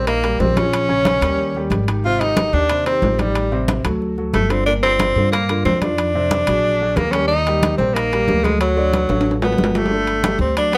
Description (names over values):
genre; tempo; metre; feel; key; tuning
Afro-Cuban jazz; 183 BPM; 4/4; straight; Eb major; A4 = 440 Hz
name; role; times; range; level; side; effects
clear tenor saxophone; melody; 0.0-10.8 s; F#3 to F4; -21 LUFS; equal; slapback echo
warm concert grand piano; accompaniment; 0.0-10.8 s; Bb2 to Eb5; -27 LUFS; equal; none
upright bass; bass; 0.0-10.8 s; G1 to G2; -24 LUFS; equal; none
congas; percussion; 0.1-10.8 s; none; -27 LUFS; equal; none
timbales; percussion; 0.1-10.8 s; none; -27 LUFS; equal; none
room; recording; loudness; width
light reverb; none; -18 LUFS; mono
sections
0.0-9.9 A section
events
drum fill 9.1-9.9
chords
0.0 Eb6; 0.7 Bbm7; 1.4 Eb7; 2.0 Abmaj7#11; 3.4 Am7b5; 4.0 D; 4.7 Gm7; 6.0 Fm7; 6.6 Bbaug7; 7.3 Eb; 8.6 D6; 9.9 Gmaj7sus2